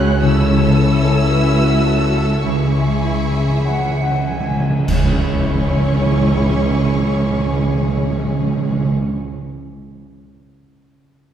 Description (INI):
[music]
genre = cinematic, emotional film score for orchestra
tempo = 48-58 BPM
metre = 4/4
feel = rubato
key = C# minor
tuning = A4 = 441 Hz
[part]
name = dark symphonic violin section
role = melody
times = 0.0-8.9 s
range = C#6 to F#6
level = -28 LUFS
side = equal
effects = none
[part]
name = warm symphonic violin section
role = second line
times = 0.0-8.9 s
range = G#4 to E5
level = -26 LUFS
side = left 2 dB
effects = none
[part]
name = warm symphonic viola section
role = accompaniment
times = 0.0-8.9 s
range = C#4 to A4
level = -26 LUFS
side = left 1 dB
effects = none
[part]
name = mellow French horn section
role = sustained chords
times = 0.0-8.9 s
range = C#4 to F#4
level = -27 LUFS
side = left 1 dB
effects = none
[part]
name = concert harp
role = arpeggios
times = 0.0-9.2 s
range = C#3 to A5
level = -21 LUFS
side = left 3 dB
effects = none
[part]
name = dark symphonic double bass section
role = bass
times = 0.0-8.9 s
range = C#2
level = -22 LUFS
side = right 3 dB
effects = none
[part]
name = rich symphonic cello section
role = bass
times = 0.0-8.9 s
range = C#2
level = -21 LUFS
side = right 2 dB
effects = none
[part]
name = cymbal swell, clash cymbals and concert bass drum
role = percussion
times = 0.2-7.3 s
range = none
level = -25 LUFS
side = right 1 dB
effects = none
[part]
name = timpani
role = percussion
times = 2.4-8.9 s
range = C#3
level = -21 LUFS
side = right 2 dB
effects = none
[part]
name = mellow flute section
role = second line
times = 3.6-4.9 s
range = F#5 to G#5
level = -25 LUFS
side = left 2 dB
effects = none
[sound]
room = wet concert hall reverb, RT60 2.1 s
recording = recorded in a church or concert hall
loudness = -14 LUFS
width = side -9 dB against mid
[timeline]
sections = 0.0-4.9 A section; 4.9-9.8 B section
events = slowing down 0.0-4.9; timpani fill 2.4-4.9; band accent 4.9-6.1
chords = 0.2 A/C#; 2.4 C#m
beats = | 0.22 1.29 2.44 3.64 | 4.88 6.11 7.34 8.57